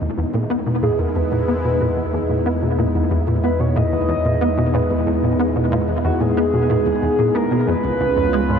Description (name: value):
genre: ambient, sequencer-driven space music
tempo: 92 BPM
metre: 4/4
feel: straight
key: unclear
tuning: A4 = 440 Hz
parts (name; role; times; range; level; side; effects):
- sweeping resonant pad; sustained chords; 0.0-8.6 s; G#3 to F4; -22 LUFS; equal; chorus
- plucky analog bass; riff; 0.0-8.6 s; Db2 to B3; -20 LUFS; equal; ensemble chorus, tape echo
- warm sub bass; bass; 0.0-8.6 s; Db2 to E2; -25 LUFS; equal; none
- pulse-width lead; melody; 0.8-8.6 s; Gb4 to D#5; -22 LUFS; equal; chorus, tape echo
room: moderate huge ambient reverb, RT60 7.5 s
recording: in a vast, echoing space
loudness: -16 LUFS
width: side -7 dB against mid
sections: 0.0-8.6 A section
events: filter sweep on analog synth bass 0.0-8.6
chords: 0.0 Emaj7; 7.7 Db7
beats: 0.50 1.15 1.80 | 2.46 3.11 3.76 4.41 | 5.07 5.72 6.37 7.02 | 7.67 8.33